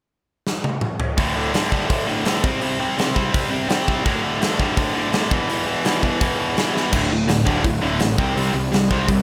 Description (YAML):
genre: punk rock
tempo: 167 BPM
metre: 4/4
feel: straight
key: unclear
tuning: A4 = 441 Hz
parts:
  - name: big rock drum kit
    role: drums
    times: 0.5-9.2 s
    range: crash cymbal, hi-hat, kick drum, snare drum, toms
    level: -24 LUFS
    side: equal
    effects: none
  - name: tight distorted guitar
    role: riff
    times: 1.2-9.2 s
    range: D2 to C4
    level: -22 LUFS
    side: equal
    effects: distortion
  - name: fuzz picked electric bass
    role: bass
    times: 6.9-9.2 s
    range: D1 to C2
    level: -25 LUFS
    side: equal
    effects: overdrive
room: little or no reverb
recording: none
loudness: -20 LUFS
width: mono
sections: 0.0-1.2 A section; 1.2-6.9 B section; 6.9-9.2 C section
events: drum fill 0.5-1.2, 6.8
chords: 0.0 N.C.; 1.2 D5; 2.4 C5; 4.1 D5; 5.3 E5; 6.9 D5; 8.2 C5